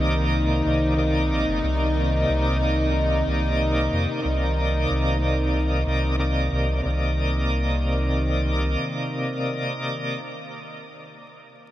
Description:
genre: trip hop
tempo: 92 BPM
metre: 4/4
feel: straight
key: C minor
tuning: A4 = 439 Hz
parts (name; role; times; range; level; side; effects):
- bright tonewheel organ; accompaniment; 0.0-10.2 s; C3 to Eb5; -27 LUFS; equal; overdrive, slow rotary speaker, tremolo, vintage 12-bit sampler grit, tape echo
- dark studio string section; sustained chords; 0.0-10.2 s; C3 to Eb4; -26 LUFS; equal; none
- warm sub bass; bass; 0.0-8.8 s; G1 to F2; -24 LUFS; equal; none
room: moderate huge ambient reverb, RT60 6.7 s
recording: dreamy mix soaked in reverb, vinyl crackle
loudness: -21 LUFS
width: side -14 dB against mid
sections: 0.0-6.8 A section; 6.8-9.4 B section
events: none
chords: 0.0 Cm9

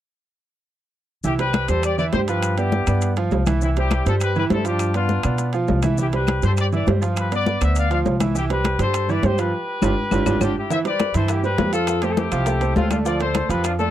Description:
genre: latin, salsa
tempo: 203 BPM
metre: 4/4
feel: straight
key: C major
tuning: A4 = 438 Hz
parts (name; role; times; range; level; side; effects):
- bright concert grand piano; accompaniment; 1.2-13.9 s; E3 to F5; -24 LUFS; right 5 dB; none
- upright bass; bass; 1.2-13.9 s; G1 to B2; -22 LUFS; left 1 dB; none
- congas; percussion; 1.2-13.9 s; none; -25 LUFS; left 3 dB; none
- maracas; percussion; 1.2-13.9 s; none; -38 LUFS; left 11 dB; none
- warm trumpet section; melody; 1.3-13.9 s; C4 to F5; -25 LUFS; left 4 dB; none
- timbales; percussion; 1.4-13.8 s; none; -29 LUFS; right 6 dB; none
- claves; percussion; 1.5-13.8 s; none; -36 LUFS; left 8 dB; none
- bongos; percussion; 10.7-13.9 s; none; -31 LUFS; left 8 dB; none
room: little or no reverb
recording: dry, close 1970s-style studio recording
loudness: -18 LUFS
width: side -12 dB against mid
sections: 1.2-10.7 A section; 10.7-13.9 B section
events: band accent 9.5-10.7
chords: 1.2 C; 2.4 G7; 3.6 C; 4.8 G7; 6.0 C; 7.2 G7; 8.3 C; 9.5 G7; 10.7 C; 11.9 Fadd9; 13.1 Dm

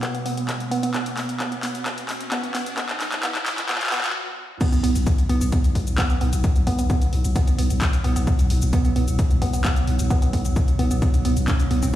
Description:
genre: driving peak-time techno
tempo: 131 BPM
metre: 4/4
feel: straight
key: unclear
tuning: A4 = 440 Hz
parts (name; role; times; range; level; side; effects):
- woody wave-folded pluck; riff; 0.0-11.9 s; B3 to D4; -28 LUFS; right 3 dB; chorus, sidechain pumping, ping-pong delay
- metallic inharmonic drone; drone; 0.0-12.0 s; B2; -30 LUFS; right 2 dB; chorus, built-in reverb, sidechain pumping
- electronic kick drum; drums; 0.0-11.6 s; none; -21 LUFS; left 1 dB; high-pass filter on kick
- punchy analog drum machine; drums; 0.0-11.9 s; crash cymbal, handclaps, hi-hat, shaker; -28 LUFS; left 1 dB; overdrive, sidechain pumping on hats, sidechain pumping on cymbals, sidechain pumping on perc
- riser; sound effects; 0.0-4.2 s; none; -34 LUFS; equal; none
- growling 808-style bass; bass; 4.7-11.9 s; B1; -23 LUFS; left 1 dB; overdrive, sidechain pumping, low-pass filter
room: light reverb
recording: played on a big sound system in a bare room, stone room reverb, high-pass filter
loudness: -19 LUFS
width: side -13 dB against mid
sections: 0.0-4.6 A section; 4.6-12.0 B section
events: build-up 0.0-4.6; drum fill 0.0-4.2; riser 0.0-4.2; filter sweep on synth arpeggio sound 0.0-4.6; filter sweep 0.0-4.6; stop 4.2-4.6; drop 4.6-12.0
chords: none

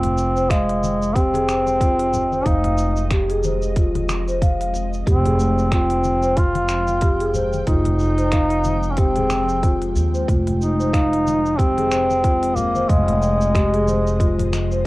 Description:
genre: organic downtempo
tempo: 92 BPM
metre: 4/4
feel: swing 57% on 16ths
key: F minor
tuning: A4 = 440 Hz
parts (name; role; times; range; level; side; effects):
- warm duduk; melody; 0.0-14.9 s; Ab3 to F4; -20 LUFS; equal; cassette tape, tape echo
- ethereal airy pad; sustained chords; 1.1-14.9 s; F3 to G5; -32 LUFS; left 3 dB; ensemble chorus, built-in reverb, phaser, sidechain pumping
- marimba with soft mallets; arpeggios; 0.0-14.8 s; F4 to F5; -24 LUFS; equal; tape echo
- upright bass; bass; 0.0-14.9 s; F1 to Eb2; -23 LUFS; equal; tube saturation
- organic electronic drum kit; drums; 0.0-14.8 s; finger snaps, hi-hat, shaker; -32 LUFS; equal; cassette tape
- congas; percussion; 0.0-14.9 s; none; -31 LUFS; left 5 dB; none
- electronic kick drum; drums; 0.5-14.3 s; none; -18 LUFS; equal; cassette tape
room: light reverb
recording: home recording on cassette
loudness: -16 LUFS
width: side -19 dB against mid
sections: 0.0-14.9 A section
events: none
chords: 0.0 Fm7

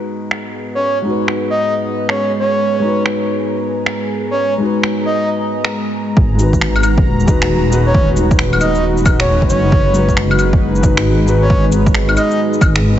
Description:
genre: future garage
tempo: 135 BPM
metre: 4/4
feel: swing 64% on 16ths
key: G# minor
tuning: A4 = 441 Hz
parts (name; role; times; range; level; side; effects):
- felt-muted upright piano; accompaniment; 0.0-12.6 s; G#3 to B4; -20 LUFS; left 2 dB; sidechain pumping, tape echo
- dark analog pad; sustained chords; 0.1-13.0 s; G#3 to A#5; -20 LUFS; equal; chorus, sidechain pumping
- electronic finger snaps, cabasa, shaker and claves; drums; 0.3-12.8 s; none; -20 LUFS; left 1 dB; overdrive, low-pass filter on perc, low-pass filter on snare
- breathy flute-like synth lead; melody; 0.7-12.4 s; C#5 to D#5; -19 LUFS; right 1 dB; chorus, tape echo
- dark detuned saw bass; bass; 6.2-13.0 s; D#1 to G#1; -15 LUFS; equal; sidechain pumping
- electronic kick drum; drums; 6.2-12.7 s; none; -14 LUFS; equal; overdrive
room: light reverb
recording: heavily compressed radio sound, multiband compression, nothing above 7.9 kHz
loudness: -12 LUFS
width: side -11 dB against mid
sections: 0.0-6.2 A section; 6.2-13.0 B section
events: none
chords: 0.0 G#m7

